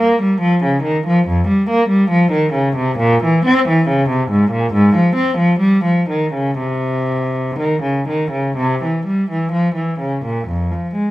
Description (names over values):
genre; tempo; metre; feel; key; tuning
classical, baroque-style suite movement for unaccompanied cello; 59-71 BPM; 4/4; rubato; unclear; A4 = 439 Hz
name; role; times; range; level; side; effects
dark cello; solo; 0.0-11.1 s; F2 to C4; -14 LUFS; equal; none
room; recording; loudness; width
moderate stone room reverb, RT60 1.3 s; none; -14 LUFS; side -16 dB against mid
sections
0.0-10.5 A section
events
none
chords
none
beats
0.40 1.25 2.10 | 3.00 3.89 4.74 5.64 | 6.60 7.61 8.59 9.54 | 10.49